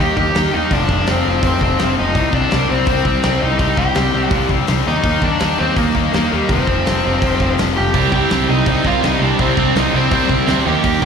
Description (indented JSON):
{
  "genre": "punk rock",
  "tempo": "166 BPM",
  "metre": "4/4",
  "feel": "straight",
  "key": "C minor",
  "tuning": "A4 = 440 Hz",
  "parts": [
    { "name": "dark smooth lead guitar", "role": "melody", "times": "0.0-11.1 s", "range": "G3 to G5", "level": "-18 LUFS", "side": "right 1 dB", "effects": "overdrive, slapback echo" },
    { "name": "distorted electric guitar", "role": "riff", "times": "0.0-11.1 s", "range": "F2 to Eb4", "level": "-20 LUFS", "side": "left 15 dB", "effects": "overdrive, slapback echo" },
    { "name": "fuzz picked electric bass", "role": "bass", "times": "0.0-11.1 s", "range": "F1 to Eb2", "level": "-20 LUFS", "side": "right 1 dB", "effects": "overdrive" },
    { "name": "big rock drum kit", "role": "drums", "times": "0.2-11.1 s", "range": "hi-hat, kick drum, snare drum", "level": "-20 LUFS", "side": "equal", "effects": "none" },
    { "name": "sludgy distorted guitar", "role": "riff", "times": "7.9-11.1 s", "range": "C3 to Eb4", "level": "-18 LUFS", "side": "right 14 dB", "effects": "overdrive, slapback echo" }
  ],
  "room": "little or no reverb",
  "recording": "live gig heard through the venue's PA, recital hall reverb",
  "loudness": "-13 LUFS",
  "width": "side -6 dB against mid",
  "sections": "0.0-11.1 A section",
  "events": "none",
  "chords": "0.0 Eb; 0.7 F5; 2.2 Cm; 4.9 Eb5; 6.5 F5; 7.9 Cm"
}